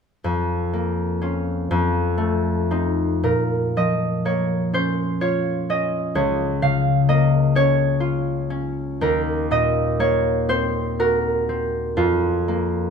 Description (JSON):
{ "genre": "classical, solo harp piece", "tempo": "36-44 BPM (dotted quarters)", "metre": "6/8", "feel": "rubato", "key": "Bb minor", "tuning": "A4 = 440 Hz", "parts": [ { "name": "concert harp", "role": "solo", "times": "0.2-12.9 s", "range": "Db2 to F5", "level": "-19 LUFS", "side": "equal", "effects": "none" } ], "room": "moderate stone room reverb, RT60 1.3 s", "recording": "close, detailed microphones", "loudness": "-19 LUFS", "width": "side -6 dB against mid", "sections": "0.2-3.2 A section; 3.2-12.9 B section", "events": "none", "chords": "0.2 Bbm/F; 1.7 F7; 3.2 Bbm; 6.2 Bbm/Db; 9.0 Cm7b5/Eb; 12.0 Bb5/F" }